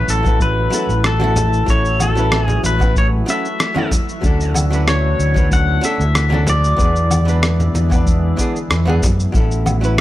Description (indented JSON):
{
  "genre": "sunset chillout",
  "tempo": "94 BPM",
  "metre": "4/4",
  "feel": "straight",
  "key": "A major",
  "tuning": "A4 = 440 Hz",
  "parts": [
    { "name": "pedal steel guitar", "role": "melody", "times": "0.0-8.4 s", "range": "A4 to F#5", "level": "-21 LUFS", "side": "left 2 dB", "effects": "vintage 12-bit sampler grit, analog delay" },
    { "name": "archtop guitar, miked and amplified", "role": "accompaniment", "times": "0.0-10.0 s", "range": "E3 to B4", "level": "-24 LUFS", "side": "equal", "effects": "auto-pan, tape echo" },
    { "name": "airy breathy pad", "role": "sustained chords", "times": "0.0-10.0 s", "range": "D3 to F#4", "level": "-26 LUFS", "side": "left 1 dB", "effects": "chorus" },
    { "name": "overdriven fingered electric bass", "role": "bass", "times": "0.1-10.0 s", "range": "A1 to F#2", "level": "-16 LUFS", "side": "equal", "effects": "none" },
    { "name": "electronic shaker, rim click and woodblock", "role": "drums", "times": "0.1-10.0 s", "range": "none", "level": "-22 LUFS", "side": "equal", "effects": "overdrive, studio reverb" },
    { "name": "congas", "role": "percussion", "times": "0.2-9.8 s", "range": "none", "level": "-24 LUFS", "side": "left 2 dB", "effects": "none" },
    { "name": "electronic kick drum", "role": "drums", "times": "0.3-9.5 s", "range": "none", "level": "-17 LUFS", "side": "equal", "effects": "overdrive, studio reverb" }
  ],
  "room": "little or no reverb",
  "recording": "dry, gritty hardware recording",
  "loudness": "-13 LUFS",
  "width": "side -15 dB against mid",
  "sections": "0.0-10.0 A section",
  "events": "none",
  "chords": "0.0 A6; 3.9 Dmaj7; 6.8 E7; 9.3 A6"
}